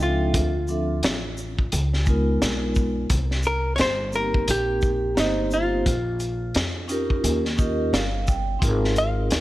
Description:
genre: hip hop, jazz-hop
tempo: 87 BPM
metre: 4/4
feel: swing 59% on 16ths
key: unclear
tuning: A4 = 440 Hz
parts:
  - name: hollow-body jazz guitar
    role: melody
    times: 0.0-9.4 s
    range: Eb4 to F5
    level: -26 LUFS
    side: equal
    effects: none
  - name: vibraphone with soft mallets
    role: accompaniment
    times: 0.0-9.4 s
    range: F3 to G5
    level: -26 LUFS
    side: right 1 dB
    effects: none
  - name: upright bass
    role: bass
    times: 0.0-9.4 s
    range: G1 to F2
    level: -26 LUFS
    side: equal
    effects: none
  - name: crunchy breakbeat drum kit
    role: drums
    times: 0.3-9.4 s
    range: hi-hat, kick drum, shaker, snare drum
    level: -25 LUFS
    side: equal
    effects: none
room: light reverb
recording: none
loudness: -20 LUFS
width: side -16 dB against mid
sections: 0.0-9.4 A section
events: vibraphone fill 7.2-8.6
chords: 0.3 Dm7; 1.7 Db13; 3.1 Cm7; 5.9 Bbm; 7.2 Eb9; 8.6 Ab69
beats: | 0.34 1.03 1.72 2.41 | 3.10 3.79 4.48 5.17 | 5.86 6.55 7.24 7.93 | 8.62 9.31

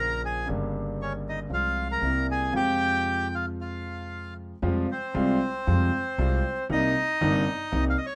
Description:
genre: tango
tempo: 116 BPM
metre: 4/4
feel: rubato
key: F minor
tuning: A4 = 441 Hz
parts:
  - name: bandoneon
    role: melody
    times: 0.0-8.1 s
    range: C4 to Bb5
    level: -30 LUFS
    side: equal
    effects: none
  - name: warm concert grand piano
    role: accompaniment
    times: 0.0-7.9 s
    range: G1 to G4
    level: -31 LUFS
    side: equal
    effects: none
  - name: upright bass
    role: bass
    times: 0.0-7.9 s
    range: G1 to F2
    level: -33 LUFS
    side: equal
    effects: none
room: moderate studio reverb, RT60 0.5 s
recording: none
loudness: -27 LUFS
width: mono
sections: 0.0-4.6 A section; 4.6-8.2 B section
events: none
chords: 0.5 Gdim; 1.5 Fm/C; 2.0 C7; 2.5 Fm; 4.6 Fmadd9; 6.7 Cm7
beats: | 0.49 1.00 1.51 2.02 | 2.54 3.05 3.57 4.10 | 4.62 5.14 5.67 6.18 | 6.70 7.21 7.72

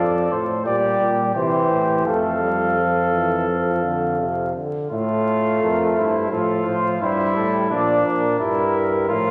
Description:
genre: classical, imitative canzona for brass ensemble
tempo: 86 BPM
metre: 4/4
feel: straight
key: F major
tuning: A4 = 440 Hz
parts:
  - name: dark trumpet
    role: melody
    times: 0.0-9.3 s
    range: A4 to F5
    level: -26 LUFS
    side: equal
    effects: none
  - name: warm flugelhorn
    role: second line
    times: 0.0-9.3 s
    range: D4 to A4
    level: -26 LUFS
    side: equal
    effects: none
  - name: warm trombone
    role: accompaniment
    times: 0.0-9.3 s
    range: C3 to A3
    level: -26 LUFS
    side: equal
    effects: none
  - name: mellow bass trombone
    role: bass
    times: 0.0-9.3 s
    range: F2 to C3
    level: -28 LUFS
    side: equal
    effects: none
room: wet scoring stage reverb, RT60 1.7 s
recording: vinyl crackle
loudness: -20 LUFS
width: mono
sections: 0.0-4.9 A section; 4.9-9.3 B section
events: none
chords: 0.0 F; 0.7 Gm/Bb; 1.4 C; 2.1 F; 7.7 Bb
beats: 0.66 1.35 | 2.06 2.77 3.48 4.20 | 4.91 5.62 6.32 7.01 | 7.71 8.40 9.10

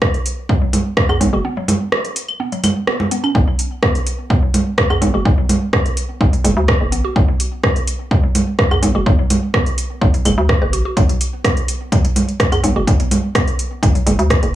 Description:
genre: minimal techno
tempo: 126 BPM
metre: 4/4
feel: straight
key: B minor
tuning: A4 = 444 Hz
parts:
  - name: booming analog drum machine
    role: drums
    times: 0.0-14.5 s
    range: hi-hat, rim click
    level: -20 LUFS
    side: equal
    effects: none
  - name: electronic kick drum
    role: drums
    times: 0.0-14.4 s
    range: none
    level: -16 LUFS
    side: equal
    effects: none
  - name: mallet-like synth pluck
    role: riff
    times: 0.5-14.0 s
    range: F#3 to B4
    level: -24 LUFS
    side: right 1 dB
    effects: chorus, sidechain pumping, tape echo
  - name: congas and claves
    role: percussion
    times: 0.7-14.2 s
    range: none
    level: -18 LUFS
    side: right 1 dB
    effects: none
  - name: hollow knocking FM bass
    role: bass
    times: 1.1-14.6 s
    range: F#1 to E2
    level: -17 LUFS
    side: equal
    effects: sidechain pumping
room: little or no reverb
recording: small room ambience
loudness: -14 LUFS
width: side -13 dB against mid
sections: 0.0-14.6 A section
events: break 1.4-3.4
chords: 0.0 B5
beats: 0.02 0.49 0.97 | 1.45 1.92 2.40 2.88 | 3.35 3.83 4.30 4.78 | 5.25 5.73 6.21 6.68 | 7.16 7.64 8.11 8.59 | 9.06 9.54 10.02 10.49 | 10.97 11.45 11.92 12.40 | 12.88 13.35 13.83 14.30

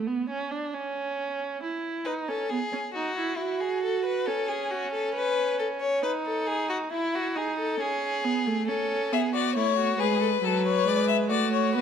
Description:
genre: classical, baroque-style fugue for string quartet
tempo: 68 BPM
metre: 4/4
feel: straight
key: unclear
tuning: A4 = 442 Hz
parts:
  - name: rich viola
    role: accompaniment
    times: 0.0-11.8 s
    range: F#3 to F#4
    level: -28 LUFS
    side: right 4 dB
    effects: none
  - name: rich violin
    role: second line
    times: 2.0-11.8 s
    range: E4 to C#5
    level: -28 LUFS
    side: left 3 dB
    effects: none
  - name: rich violin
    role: melody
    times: 9.1-11.8 s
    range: A4 to E5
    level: -26 LUFS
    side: left 9 dB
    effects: none
room: moderate scoring stage reverb, RT60 1.5 s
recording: close, detailed microphones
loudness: -25 LUFS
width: side -7 dB against mid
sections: 0.0-11.8 A section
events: none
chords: 0.0 N.C.; 1.6 E; 3.4 F#m; 5.2 B; 6.9 E; 8.7 A; 10.4 Bm7/F#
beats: 0.73 | 1.62 2.50 3.38 4.28 | 5.16 6.04 6.92 7.80 | 8.68 9.56 10.43 11.30

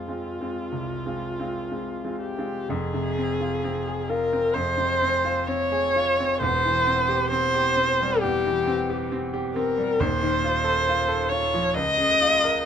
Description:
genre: classical, romantic duo for viola and grand piano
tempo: 59-69 BPM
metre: 4/4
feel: rubato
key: F minor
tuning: A4 = 440 Hz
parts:
  - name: warm viola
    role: melody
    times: 0.0-12.7 s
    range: F4 to Eb5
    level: -23 LUFS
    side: equal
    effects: none
  - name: bright concert grand piano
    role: accompaniment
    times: 0.0-12.7 s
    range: Eb1 to Bb4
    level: -27 LUFS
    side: equal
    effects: none
room: little or no reverb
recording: close, detailed microphones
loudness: -22 LUFS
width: side -8 dB against mid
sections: 0.0-2.7 A section; 2.7-12.7 B section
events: none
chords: 0.0 Fm; 6.4 C/E; 10.0 F7/Eb; 11.8 Bbm/Db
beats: 0.72 1.71 | 2.71 3.65 4.56 5.49 | 6.42 7.32 8.23 9.12 | 10.01 10.87 11.76

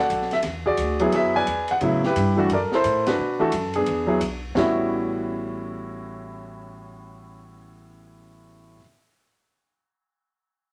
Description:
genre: jazz piano trio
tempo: 175 BPM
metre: 4/4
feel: swing 63% on 8ths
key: A mixolydian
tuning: A4 = 440 Hz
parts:
  - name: warm baby grand piano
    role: melody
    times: 0.0-8.8 s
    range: A2 to G#5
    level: -24 LUFS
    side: equal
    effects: none
  - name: upright bass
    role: bass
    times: 0.0-8.8 s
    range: A1 to B2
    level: -33 LUFS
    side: equal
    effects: none
  - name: open jazz drum kit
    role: drums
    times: 0.1-4.7 s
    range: hi-hat, kick drum, ride cymbal, snare drum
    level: -35 LUFS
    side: equal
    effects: none
room: moderate studio reverb, RT60 0.7 s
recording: none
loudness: -23 LUFS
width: mono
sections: 0.0-4.5 A section; 4.5-7.3 B section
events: band accent 3.0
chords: 0.4 E9; 1.8 A13; 2.5 F#7alt; 3.2 Bm7; 3.9 E7; 4.5 A13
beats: 0.10 | 0.44 0.78 1.13 1.47 | 1.81 2.15 2.50 2.84 | 3.18 3.52 3.86 4.21 | 4.55 4.89 5.23 5.58 | 5.92 6.26 6.60 6.94

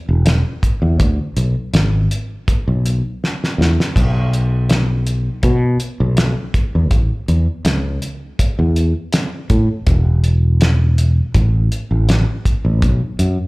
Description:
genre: straight-eighth soul blues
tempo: 81 BPM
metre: 4/4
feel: swing 53% on 16ths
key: E mixolydian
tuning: A4 = 440 Hz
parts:
  - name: fretless electric bass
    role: bass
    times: 0.1-13.4 s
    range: E1 to B2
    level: -14 LUFS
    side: equal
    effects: none
  - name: cloth-damped thuddy drum kit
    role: drums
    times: 0.3-13.4 s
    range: crash cymbal, hi-hat, kick drum, snare drum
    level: -18 LUFS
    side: equal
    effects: none
room: little or no reverb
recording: live gig heard through the venue's PA, club reverb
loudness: -14 LUFS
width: side -24 dB against mid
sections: 0.0-13.5 A section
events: drum fill 3.2-4.0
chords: none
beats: 0.25 | 0.99 1.74 2.48 3.22 | 3.96 4.70 5.43 6.17 | 6.91 7.65 8.39 9.13 | 9.87 10.61 11.35 12.09 | 12.82

